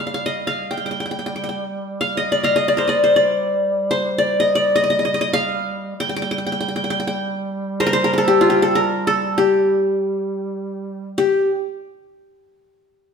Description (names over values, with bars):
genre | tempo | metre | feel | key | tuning
Turkish makam ensemble | free time | none | none | G makam nihavent | A4 = 440 Hz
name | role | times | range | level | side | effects
qanun | melody | 0.0-11.5 s | F4 to G5 | -17 LUFS | left 1 dB | none
mellow duduk | drone | 0.0-11.3 s | G3 | -28 LUFS | right 2 dB | none
room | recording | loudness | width
wet stone room reverb, RT60 1.2 s | band playing live in one room | -17 LUFS | side -6 dB against mid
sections
0.0-11.2 A section; 11.2-13.1 B section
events
none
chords
none